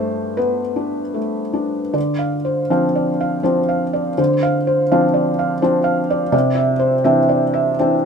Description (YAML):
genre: neoclassical minimalist piano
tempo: 74-87 BPM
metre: 3/4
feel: rubato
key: D dorian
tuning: A4 = 440 Hz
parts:
  - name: felt-muted upright piano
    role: solo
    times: 0.0-8.1 s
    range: G2 to F5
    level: -16 LUFS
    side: equal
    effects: none
room: light reverb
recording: minimal, uncompressed stereo recording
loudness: -16 LUFS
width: side -6 dB against mid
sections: 0.0-2.0 A section; 2.0-8.1 B section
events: none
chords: 0.0 Gadd9; 2.0 Dm7; 6.3 Cadd9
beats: 0.38 1.17 | 1.96 2.71 3.45 | 4.18 4.91 5.63 | 6.33 7.04 7.80